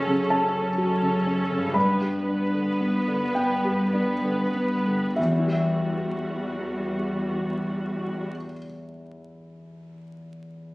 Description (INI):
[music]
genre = cinematic, emotional film score for orchestra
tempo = 32-44 BPM (dotted quarters)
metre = 6/8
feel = rubato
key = E dorian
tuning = A4 = 439 Hz
[part]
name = dark concert grand piano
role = accompaniment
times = 0.0-10.7 s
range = E2 to B5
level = -26 LUFS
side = equal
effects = none
[part]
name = warm symphonic viola section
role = accompaniment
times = 0.0-8.3 s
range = G3 to B4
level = -29 LUFS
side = equal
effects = none
[part]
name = concert harp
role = arpeggios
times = 0.0-9.1 s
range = E2 to E5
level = -33 LUFS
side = left 2 dB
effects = none
[part]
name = warm symphonic cello section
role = bass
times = 0.0-8.3 s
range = E2 to G2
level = -30 LUFS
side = equal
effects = none
[sound]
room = moderate scoring stage reverb, RT60 1.7 s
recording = recorded on a phone in the room, studio reverb, vinyl crackle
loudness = -22 LUFS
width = side -22 dB against mid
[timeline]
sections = 0.0-5.2 A section; 5.2-8.9 B section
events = slowing down 0.0-5.2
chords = 0.0 F#m; 1.8 G; 5.2 Emadd9